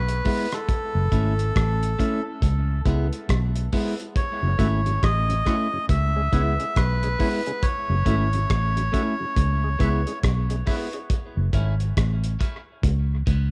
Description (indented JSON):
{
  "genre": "dub reggae",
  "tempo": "69 BPM",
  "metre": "4/4",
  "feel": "swing 61% on 16ths",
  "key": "F# dorian",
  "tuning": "A4 = 439 Hz",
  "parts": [
    { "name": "melodica", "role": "melody", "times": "0.0-10.2 s", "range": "A4 to E5", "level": "-30 LUFS", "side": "equal", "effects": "cassette tape, dub echo" },
    { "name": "vintage muted fingered electric bass", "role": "bass", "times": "0.0-13.5 s", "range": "F#1 to C#2", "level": "-25 LUFS", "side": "equal", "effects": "none" },
    { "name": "clean electric guitar", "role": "accompaniment", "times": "0.1-13.5 s", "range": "G#3 to E4", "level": "-32 LUFS", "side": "equal", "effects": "spring reverb, high-pass filter, dub echo" },
    { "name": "cloth-damped thuddy drum kit", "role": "drums", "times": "0.1-13.5 s", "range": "hi-hat, kick drum, rim click", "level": "-27 LUFS", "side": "equal", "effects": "cassette tape" },
    { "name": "tonewheel organ", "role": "accompaniment", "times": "4.4-11.0 s", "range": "F#2 to F#4", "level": "-36 LUFS", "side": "equal", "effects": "overdrive, slow rotary speaker, high-pass filter" }
  ],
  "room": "little or no reverb",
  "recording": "home recording on cassette",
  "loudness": "-23 LUFS",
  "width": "mono",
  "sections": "0.0-13.5 A section",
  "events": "break 0.0-4.2; filter sweep 7.6-13.5",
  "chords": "0.0 C#m7 (rootless); 0.7 F#m7 (rootless); 2.4 C#m7; 4.2 F#m7; 5.9 C#m7; 7.6 F#m7; 9.4 C#m7; 11.1 F#m7 (rootless); 12.8 C#m7"
}